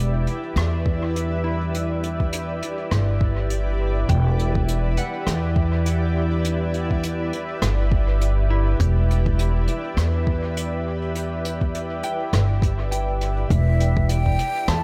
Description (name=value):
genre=ambient dub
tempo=102 BPM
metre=4/4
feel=swing 57% on 16ths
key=E minor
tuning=A4 = 440 Hz
part: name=granular cloud pad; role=sustained chords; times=0.0-14.8 s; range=E4 to G5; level=-30 LUFS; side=equal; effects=built-in reverb
part: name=upright bass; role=bass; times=0.0-14.8 s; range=E1 to E2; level=-24 LUFS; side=equal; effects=tube saturation
part: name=jazz brush drum kit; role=drums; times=0.3-14.8 s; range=hi-hat, rim click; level=-34 LUFS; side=equal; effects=dub echo
part: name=electronic kick drum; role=drums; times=0.9-14.4 s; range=none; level=-25 LUFS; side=equal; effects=none
part: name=concert harp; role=arpeggios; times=1.4-14.8 s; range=E4 to G5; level=-37 LUFS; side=equal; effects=vintage 12-bit sampler grit, dub echo
part: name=breathy concert flute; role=melody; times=13.5-14.8 s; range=E5 to A5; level=-28 LUFS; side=equal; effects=dub echo
room=light reverb, small room ambience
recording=none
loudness=-22 LUFS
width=mono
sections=0.0-13.5 A section; 13.5-14.8 B section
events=filter sweep on harp 0.0-13.5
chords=0.0 Em7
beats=0.56 1.15 | 1.74 2.33 2.92 3.50 | 4.09 4.68 5.27 5.86 | 6.45 7.04 7.62 8.21 | 8.80 9.39 9.98 10.56 | 11.15 11.74 12.33 12.92 | 13.51 14.09 14.68